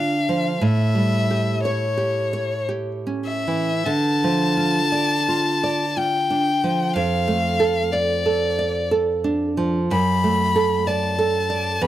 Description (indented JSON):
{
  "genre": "romantic duo for violin and classical guitar",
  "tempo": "49-64 BPM",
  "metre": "3/4",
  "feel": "rubato",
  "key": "D minor",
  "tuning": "A4 = 438 Hz",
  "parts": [
    { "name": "bright violin", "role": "melody", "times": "0.0-11.9 s", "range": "C#5 to B5", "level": "-23 LUFS", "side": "left 4 dB", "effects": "none" },
    { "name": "nylon-string guitar", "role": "accompaniment", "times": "0.0-11.9 s", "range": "E2 to D5", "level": "-20 LUFS", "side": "right 2 dB", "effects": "none" }
  ],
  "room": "studio reverb",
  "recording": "dry, close 1970s-style studio recording",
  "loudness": "-18 LUFS",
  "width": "side -12 dB against mid",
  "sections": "0.0-11.9 A section",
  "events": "none",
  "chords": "0.0 Dm; 0.6 A7; 3.9 Dm; 7.0 Dm/F; 9.9 D/F#"
}